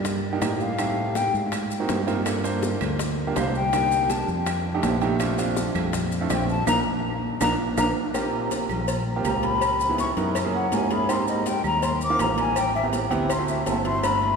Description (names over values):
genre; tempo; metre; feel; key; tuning
Afro-Cuban jazz; 163 BPM; 4/4; straight; Bb major; A4 = 440 Hz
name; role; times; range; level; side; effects
fingered electric bass; bass; 0.0-14.4 s; G1 to A2; -28 LUFS; equal; none
bongos and cowbell; percussion; 0.0-14.2 s; none; -33 LUFS; left 5 dB; none
congas; percussion; 0.0-14.4 s; none; -34 LUFS; equal; none
maracas; percussion; 0.1-14.2 s; none; -39 LUFS; left 6 dB; none
timbales and agogo bells; percussion; 0.1-14.4 s; none; -31 LUFS; right 5 dB; none
warm concert grand piano; accompaniment; 0.3-14.4 s; A3 to C5; -28 LUFS; right 4 dB; none
breathy hollow jazz flute; melody; 0.4-14.4 s; Eb5 to D6; -27 LUFS; left 4 dB; none
claves; percussion; 0.4-14.2 s; none; -40 LUFS; right 5 dB; none
room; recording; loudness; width
wet cathedral reverb, RT60 4.5 s; recorded in a church or concert hall; -21 LUFS; side -5 dB against mid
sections
0.0-8.1 A section; 8.1-14.4 A section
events
flute solo 0.0-14.4; band accent 6.7-8.1; drum fill 7.2-8.1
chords
0.0 Cm7 (rootless); 0.8 Am7b5; 1.5 Ab9; 2.3 Gm7; 3.7 Cm7; 4.5 F13; 5.2 Bbmaj7; 7.4 Bb; 8.1 Bbm69; 9.6 Dbm7; 10.4 Gb9; 11.1 Abmaj9; 12.6 Am7; 13.3 D7